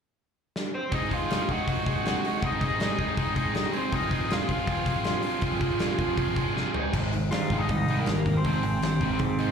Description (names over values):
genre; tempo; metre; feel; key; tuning
punk rock; 160 BPM; 4/4; straight; Ab mixolydian; A4 = 440 Hz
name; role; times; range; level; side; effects
big rock drum kit; drums; 0.6-9.5 s; crash cymbal, hi-hat, kick drum, snare drum, toms; -28 LUFS; equal; none
overdriven electric guitar; melody; 0.7-9.5 s; Bb3 to Gb5; -30 LUFS; equal; slapback echo, digital delay
sludgy distorted guitar; riff; 0.9-9.5 s; Ab2 to Ab4; -29 LUFS; right 1 dB; overdrive, slapback echo
growling picked electric bass; bass; 6.9-9.5 s; Ab1 to Ab2; -29 LUFS; equal; overdrive
room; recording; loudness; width
studio reverb; live gig heard through the venue's PA, club reverb; -24 LUFS; side -7 dB against mid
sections
0.9-6.9 A section; 6.9-9.5 B section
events
drum fill 0.5-0.9, 6.6-6.9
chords
0.0 N.C.; 0.9 Ab; 3.9 Fm; 6.7 Ab